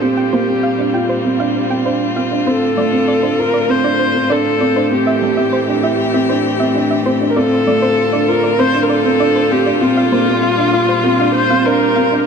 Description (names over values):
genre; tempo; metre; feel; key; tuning
piano and strings electronica; 98 BPM; 4/4; straight; D minor; A4 = 438 Hz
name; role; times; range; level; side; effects
dark viola; melody; 0.0-12.3 s; F4 to C5; -16 LUFS; left 1 dB; digital delay
rich string quartet; sustained chords; 0.0-12.2 s; A2 to G4; -20 LUFS; left 2 dB; low-pass filter
dark upright piano; riff; 0.0-12.2 s; A3 to F4; -16 LUFS; right 2 dB; digital delay
soft round pluck; arpeggios; 0.2-12.1 s; C5 to G5; -23 LUFS; right 1 dB; chorus, digital delay
room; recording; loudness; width
wet huge ambient reverb, RT60 7.2 s; none; -12 LUFS; side -6 dB against mid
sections
0.0-12.3 A section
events
build-up 0.0-12.3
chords
0.0 C7sus4; 2.5 Dm7; 4.9 Am7; 7.4 Dm7; 9.8 C7sus4